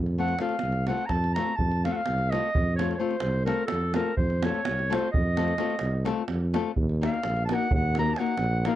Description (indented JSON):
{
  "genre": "balkan folk, Balkan wedding band",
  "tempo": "254 BPM (eighths)",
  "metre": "11/8",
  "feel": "straight",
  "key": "F phrygian dominant",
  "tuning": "A4 = 439 Hz",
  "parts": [
    { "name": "dark tuba", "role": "bass", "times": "0.0-8.7 s", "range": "Bb1 to F2", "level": "-27 LUFS", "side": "right 1 dB", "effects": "none" },
    { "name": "davul", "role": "percussion", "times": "0.1-8.8 s", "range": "none", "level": "-31 LUFS", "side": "right 2 dB", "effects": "none" },
    { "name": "warm clarinet", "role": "melody", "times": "0.2-8.8 s", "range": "A4 to Bb5", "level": "-29 LUFS", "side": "right 1 dB", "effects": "none" },
    { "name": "nylon-string guitar", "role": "accompaniment", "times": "0.2-8.8 s", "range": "A3 to Bb4", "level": "-29 LUFS", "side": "left 8 dB", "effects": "none" }
  ],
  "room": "little or no reverb",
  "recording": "dry, close 1970s-style studio recording",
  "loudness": "-24 LUFS",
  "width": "side -13 dB against mid",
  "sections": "0.0-8.8 A section",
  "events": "clarinet solo 0.0-8.8",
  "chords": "0.0 F; 6.8 Ebm"
}